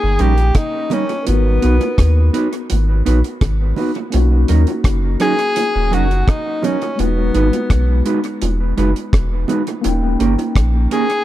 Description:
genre	lovers rock reggae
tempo	84 BPM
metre	4/4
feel	straight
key	G# minor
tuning	A4 = 440 Hz
part	breathy tenor saxophone	melody	0.0-11.2 s	B3 to G#4	-20 LUFS	left 1 dB	tape echo
part	mellow tine electric piano	accompaniment	0.0-11.2 s	G#3 to G5	-24 LUFS	left 4 dB	medium stereo tremolo
part	warm sub bass	bass	0.0-10.9 s	D#1 to D#2	-15 LUFS	equal	none
part	mellow electric guitar	stabs	0.2-11.1 s	F#3 to B4	-21 LUFS	right 3 dB	dub echo
part	deep reggae drum kit	drums	0.2-11.2 s	hi-hat, kick drum, rim click	-19 LUFS	equal	dub echo
part	bongos	percussion	0.9-10.5 s	none	-28 LUFS	right 6 dB	dub echo
room	studio reverb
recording	dark, warm production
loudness	-14 LUFS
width	side -14 dB against mid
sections	0.0-11.2 A section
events	none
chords	0.0 D#7; 1.3 G#m7; 4.1 Bmaj9 (rootless); 7.0 Emaj9; 9.8 D#7

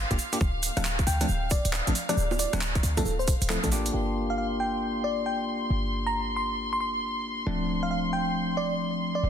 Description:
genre	UK garage, two-step garage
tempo	136 BPM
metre	4/4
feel	swing 64% on 16ths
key	G minor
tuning	A4 = 440 Hz
part	dark studio violin section	sustained chords	0.0-9.3 s	F5 to C6	-35 LUFS	equal	vintage 12-bit sampler grit, sidechain pumping
part	short 808-style bass	bass	0.0-9.3 s	D1 to D2	-30 LUFS	equal	tube saturation
part	bell-like tine electric piano	stabs	0.1-9.3 s	F3 to G4	-31 LUFS	left 1 dB	low-pass filter, ping-pong delay
part	electronic kick drum	drums	0.1-3.7 s	none	-27 LUFS	equal	none
part	garage drum kit	drums	0.1-3.9 s	bongos, handclaps, hi-hat, rim click	-31 LUFS	right 2 dB	soft clipping on snare
part	tube shaker	percussion	0.2-3.9 s	none	-37 LUFS	right 4 dB	none
part	bell-like FM electric piano	melody	0.8-9.3 s	A4 to C6	-31 LUFS	equal	chorus, ping-pong delay
room	light reverb, digital ambience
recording	dense, heavily limited modern master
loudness	-25 LUFS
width	side -9 dB against mid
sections	0.0-3.9 A section; 3.9-9.3 B section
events	none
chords	0.4 Dm; 3.9 Gm7; 7.5 Dm7

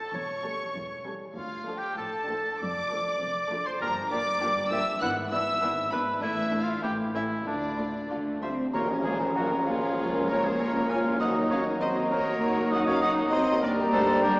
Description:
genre	cinematic, playful, whimsical film cue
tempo	98 BPM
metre	2/4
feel	straight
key	D minor, Bb minor from 8.7 s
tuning	A4 = 440 Hz
part	warm studio violin section	melody	0.0-14.4 s	Gb4 to F#6	-35 LUFS	left 1 dB	none
part	clear oboe	second line	0.0-14.4 s	D4 to F#5	-31 LUFS	equal	none
part	rich studio violin section	second line	0.0-14.3 s	C#4 to Ab5	-36 LUFS	equal	none
part	rich studio viola section	accompaniment	0.0-14.4 s	E3 to Gb4	-35 LUFS	equal	none
part	dark studio cello section	bass	0.1-14.3 s	D2 to F4	-33 LUFS	equal	none
part	dark studio double bass section	bass	0.1-14.4 s	E1 to Eb2	-40 LUFS	equal	none
part	music box	melody	8.4-14.4 s	F5 to F6	-34 LUFS	equal	none
part	clear clarinet	second line	8.7-14.4 s	Db5 to Eb5	-34 LUFS	equal	none
part	concert flute	second line	8.7-14.4 s	Bb5	-31 LUFS	equal	none
part	dark French horn section	sustained chords	8.7-14.4 s	F3 to Eb4	-33 LUFS	equal	none
part	tam-tam	percussion	8.7-11.2 s	none	-38 LUFS	equal	none
part	mellow bassoon	accompaniment	8.8-14.4 s	F3 to G3	-32 LUFS	equal	none
room	wet concert hall reverb, RT60 2.3 s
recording	recorded in a church or concert hall, small speaker sound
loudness	-25 LUFS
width	side -24 dB against mid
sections	0.0-8.7 A section; 8.7-14.4 B section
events	band accent 8.7-9.4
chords	0.1 A7/E; 1.4 Dm; 2.6 Dm/F; 3.8 Gm7; 5.0 E/G#; 6.2 N.C.; 7.5 D5; 8.7 Bbm; 10.0 Bbm/Db; 11.2 Ebm; 12.4 Ebm/Gb; 13.6 Gm

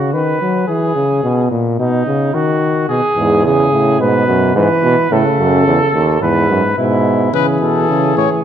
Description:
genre	classical, imitative canzona for brass ensemble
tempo	108 BPM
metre	4/4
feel	straight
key	E major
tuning	A4 = 440 Hz
part	warm flugelhorn	second line	0.0-8.4 s	D#4 to B4	-16 LUFS	right 1 dB	none
part	warm trombone	accompaniment	0.0-8.4 s	G#2 to F#3	-16 LUFS	left 1 dB	none
part	mellow euphonium	bass	3.2-8.3 s	D#2 to C#3	-15 LUFS	right 3 dB	none
part	warm trumpet	melody	7.3-8.3 s	A4 to C#5	-17 LUFS	left 12 dB	none
room	moderate recital hall reverb, RT60 1.5 s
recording	dark, warm production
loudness	-11 LUFS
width	side -9 dB against mid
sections	0.0-7.3 A section; 7.3-8.4 B section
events	none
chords	0.0 B; 0.7 E; 1.8 B; 2.9 E; 5.1 A; 6.2 E; 7.3 A

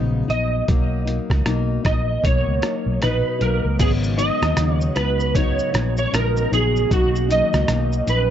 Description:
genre	indie pop, bedroom pop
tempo	77 BPM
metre	4/4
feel	swing 60% on 16ths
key	unclear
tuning	A4 = 440 Hz
part	fingerpicked plugged-in steel-string acoustic guitar	accompaniment	0.0-8.3 s	G#2 to D#4	-25 LUFS	left 6 dB	lush chorus, warbly pitch drift
part	vintage muted fingered electric bass	bass	0.0-8.3 s	G#1 to D#2	-22 LUFS	equal	none
part	electric slide guitar	melody	0.3-8.3 s	F#4 to D#5	-22 LUFS	right 3 dB	ensemble chorus, tape echo
part	trip hop sampler-style drum kit	drums	0.3-8.3 s	crash cymbal, hi-hat, kick drum, rim click, shaker	-22 LUFS	equal	none
part	hollow soft pad	sustained chords	3.8-8.3 s	C#3 to F#4	-32 LUFS	equal	ensemble chorus
room	light reverb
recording	dark, warm production, nothing above 7.8 kHz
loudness	-17 LUFS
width	side -10 dB against mid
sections	0.0-3.8 A section; 3.8-8.3 B section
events	none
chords	0.0 G#m11; 0.7 Bmaj7; 3.8 G#m11; 6.9 Bmaj7

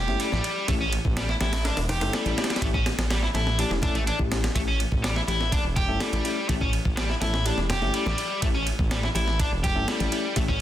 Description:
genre	breakbeat, breaks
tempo	124 BPM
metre	4/4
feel	straight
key	unclear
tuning	A4 = 440 Hz
part	biting overdriven guitar	riff	0.0-10.6 s	G3 to G4	-28 LUFS	equal	tape echo
part	detuned saw bass	bass	0.0-10.6 s	E1 to A1	-28 LUFS	equal	none
part	bell-like tine electric piano	stabs	0.1-10.5 s	A3 to A4	-32 LUFS	left 4 dB	phaser, tape echo
part	breakbeat sampler-style drum kit	drums	0.1-10.6 s	kick drum, ride cymbal, snare drum	-28 LUFS	equal	none
part	congas and bongos	percussion	0.3-10.6 s	none	-36 LUFS	left 2 dB	none
room	light reverb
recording	dense, heavily limited modern master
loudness	-22 LUFS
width	side -12 dB against mid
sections	0.0-10.6 A section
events	none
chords	0.0 A7

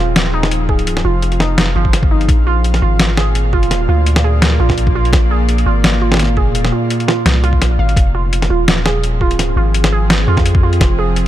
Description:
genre	half-time drum and bass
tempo	169 BPM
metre	4/4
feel	swing 54% on 16ths, half-time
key	F dorian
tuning	A4 = 440 Hz
part	bowed-like drone	sustained chords	0.0-11.3 s	Bb2 to F5	-21 LUFS	equal	built-in reverb, sidechain pumping
part	warbly dusty pluck	arpeggios	0.0-11.2 s	F3 to F5	-20 LUFS	right 5 dB	chorus, digital delay
part	long sustained 808-style bass	bass	0.0-11.3 s	Eb1 to F2	-15 LUFS	equal	tube saturation
part	boom bap sampler-style drum kit	drums	0.2-11.2 s	hi-hat, snare drum	-17 LUFS	left 1 dB	none
part	electronic kick drum	drums	0.7-10.9 s	none	-14 LUFS	equal	none
room	little or no reverb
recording	dark, warm production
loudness	-11 LUFS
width	side -13 dB against mid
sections	0.0-11.3 A section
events	kick drops out 7.6-8.0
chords	0.0 Fm; 2.3 Bb; 8.0 Fm

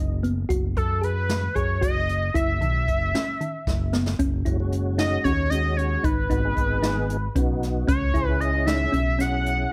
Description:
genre	progressive instrumental, band music in an uneven meter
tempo	228 BPM (eighths)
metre	7/8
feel	straight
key	unclear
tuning	A4 = 439 Hz
part	lead with added fifth	melody	0.0-9.7 s	A4 to F#5	-29 LUFS	equal	chorus, plate reverb
part	thumb-piano-like synth pluck	arpeggios	0.0-9.5 s	D#3 to G#4	-31 LUFS	equal	chorus, plate reverb, tape echo
part	overdriven fingered electric bass	bass	0.0-9.6 s	F#1 to F#2	-28 LUFS	equal	none
part	jazz brush drum kit	drums	0.2-9.6 s	hi-hat, kick drum, snare drum	-29 LUFS	equal	none
part	tonewheel organ	accompaniment	4.5-9.7 s	G#3 to G#4	-33 LUFS	equal	overdrive, chorus vibrato, slow rotary speaker, plate reverb
room	light reverb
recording	none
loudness	-24 LUFS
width	mono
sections	0.0-4.2 A section; 4.2-9.7 B section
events	drum fill 3.7-4.2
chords	0.0 N.C.; 0.5 F#sus2; 2.4 C#madd9/F# (rootless); 4.2 F#sus2; 6.0 G#m7; 7.9 C#m

